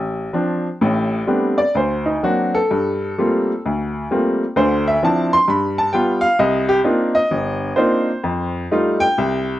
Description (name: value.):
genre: solo jazz.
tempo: 128 BPM.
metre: 4/4.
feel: swing 66% on 8ths, rubato.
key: unclear.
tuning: A4 = 440 Hz.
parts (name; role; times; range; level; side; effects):
bright upright piano; solo; 0.0-9.6 s; G1 to C6; -16 LUFS; equal; none.
room: light reverb.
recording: worn, warbling old tape, cassette tape, warbly pitch drift.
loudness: -16 LUFS.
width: side -14 dB against mid.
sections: 0.0-9.6 A section.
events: upright piano solo 0.0-9.6.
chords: 0.0 Dm7; 0.8 Am11; 1.7 Daug7; 2.7 Gm11; 4.6 Dm9; 5.5 G7; 6.4 Cm11; 8.2 F9.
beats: 0.33 | 0.80 1.27 1.74 2.23 | 2.71 3.18 3.65 4.11 | 4.57 5.03 5.49 5.93 | 6.39 6.85 7.31 7.77 | 8.24 8.71 9.19.